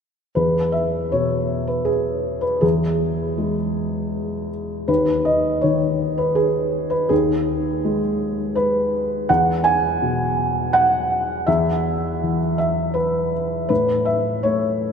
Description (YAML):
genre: neoclassical minimalist piano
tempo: 80 BPM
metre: 3/4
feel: rubato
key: E major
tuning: A4 = 440 Hz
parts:
  - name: felt-muted upright piano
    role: solo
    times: 0.4-14.9 s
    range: D#2 to G#5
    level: -18 LUFS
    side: equal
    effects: none
room: wet cathedral reverb, RT60 5.8 s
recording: recorded in a church or concert hall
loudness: -18 LUFS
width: side -6 dB against mid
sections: 0.4-14.9 A section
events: none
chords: 0.4 E; 4.9 G#m/D#; 9.3 Eadd9; 13.7 N.C.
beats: | 0.36 1.12 1.87 | 2.63 3.38 4.13 | 4.88 5.63 6.37 | 7.11 7.84 8.57 | 9.29 10.01 10.74 | 11.47 12.22 12.96 | 13.70 14.45